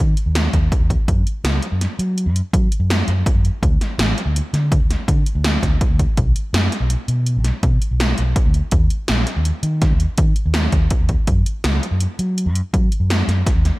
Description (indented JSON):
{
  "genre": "progressive instrumental, band music in an uneven meter",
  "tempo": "165 BPM",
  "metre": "7/4",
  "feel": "straight",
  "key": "unclear",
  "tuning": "A4 = 439 Hz",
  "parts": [
    { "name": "fingered electric bass", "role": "bass", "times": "0.0-13.7 s", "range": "A1 to Gb3", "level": "-18 LUFS", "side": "equal", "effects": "none" },
    { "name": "80s electronic pad drums", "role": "drums", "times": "0.2-13.7 s", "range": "hi-hat, kick drum, snare drum", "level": "-18 LUFS", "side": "equal", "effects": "none" }
  ],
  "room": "light reverb",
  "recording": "none",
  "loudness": "-16 LUFS",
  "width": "side -20 dB against mid",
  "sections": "0.0-13.8 A section",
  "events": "none",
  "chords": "none"
}